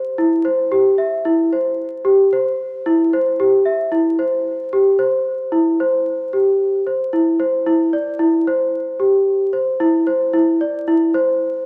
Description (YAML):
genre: contemporary instrumental, contemporary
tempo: 112 BPM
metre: 5/4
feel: straight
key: C major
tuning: A4 = 440 Hz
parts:
  - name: celesta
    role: solo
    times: 0.0-11.6 s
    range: E4 to E5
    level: -17 LUFS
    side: equal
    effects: none
room: wet recital hall reverb, RT60 1.6 s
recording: vinyl crackle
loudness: -17 LUFS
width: mono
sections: 0.0-5.5 A section; 5.5-11.7 B section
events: none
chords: none